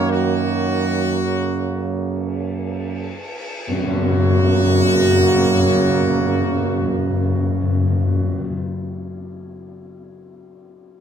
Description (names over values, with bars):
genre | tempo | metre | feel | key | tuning
classical, ceremonial fanfare | 45-57 BPM | 3/4 | straight | F# major | A4 = 444 Hz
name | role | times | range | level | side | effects
bright trumpet section | melody | 0.0-8.4 s | F#4 | -25 LUFS | left 2 dB | none
mellow French horn section | sustained chords | 0.0-8.4 s | F#3 to F#4 | -24 LUFS | equal | none
warm trombone section | sustained chords | 0.0-8.4 s | C#3 to A#3 | -26 LUFS | right 1 dB | none
mellow tuba | bass | 0.0-8.4 s | F#2 | -21 LUFS | right 6 dB | none
cymbal swell and tam-tam | percussion | 0.1-8.6 s | none | -30 LUFS | left 1 dB | none
timpani | percussion | 3.7-8.6 s | F#2 | -21 LUFS | left 3 dB | none
room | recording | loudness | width
light reverb | none | -16 LUFS | side -8 dB against mid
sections
0.0-3.7 A section; 3.7-7.7 B section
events
slowing down 0.0-3.7; band accent 3.7-5.0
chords
0.1 F#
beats
| 0.10 1.21 2.38 | 3.68 5.00 6.33